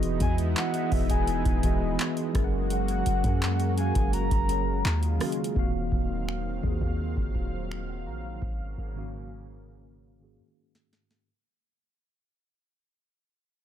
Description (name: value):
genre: contemporary R&B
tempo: 84 BPM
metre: 4/4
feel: straight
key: Eb dorian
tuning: A4 = 440 Hz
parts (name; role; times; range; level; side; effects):
- mellow tine electric piano; accompaniment; 0.0-11.3 s; Ab2 to Bb5; -32 LUFS; equal; medium stereo tremolo, low-pass filter
- lush unison pad; sustained chords; 0.0-11.2 s; Db3 to F5; -35 LUFS; right 2 dB; chorus, low-pass filter
- warm 808-style bass; bass; 0.0-10.9 s; D#1 to Ab2; -30 LUFS; equal; none
- booming analog drum machine; drums; 0.0-11.3 s; finger snaps, handclaps, hi-hat, kick drum, rim click, snare drum; -28 LUFS; equal; none
- soft octave-layered synth lead; melody; 0.2-5.2 s; E5 to Bb5; -33 LUFS; left 2 dB; chorus, phaser
room: little or no reverb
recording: none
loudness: -25 LUFS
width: side -10 dB against mid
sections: 0.0-5.6 A section; 5.6-11.3 B section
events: fade-out 5.6-11.3; filter sweep 5.6-11.3; drum fill 8.4-11.3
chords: 0.0 Emaj7; 2.3 Gbmaj9; 4.8 Ebm11; 5.6 Ebm69; 8.4 Ab13sus4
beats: 0.56 1.28 1.99 | 2.71 3.42 4.13 4.85 | 5.56 6.28 6.99 7.71 | 8.42 9.13 9.85 10.56